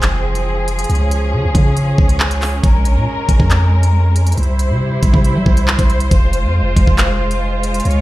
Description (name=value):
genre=hip hop, drill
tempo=138 BPM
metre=4/4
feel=half-time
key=F harmonic minor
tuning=A4 = 440 Hz
part: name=concert harp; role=accompaniment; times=0.0-1.5 s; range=C4 to C5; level=-39 LUFS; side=left 6 dB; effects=none
part: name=muted symphonic string section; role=sustained chords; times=0.0-8.0 s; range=F3 to Db5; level=-20 LUFS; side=equal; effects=none
part: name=long sustained 808-style bass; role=bass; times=0.0-8.0 s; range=F1 to G3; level=-15 LUFS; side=equal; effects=none
part: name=drill drum kit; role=drums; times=0.0-8.0 s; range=handclaps, hi-hat, kick drum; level=-14 LUFS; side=equal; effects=none
room=little or no reverb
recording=played on a big sound system in a bare room, stone room reverb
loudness=-12 LUFS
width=side -17 dB against mid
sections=0.0-8.0 A section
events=none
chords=0.0 Fm; 0.9 Db; 2.6 Bbm7; 4.4 C; 6.1 Fm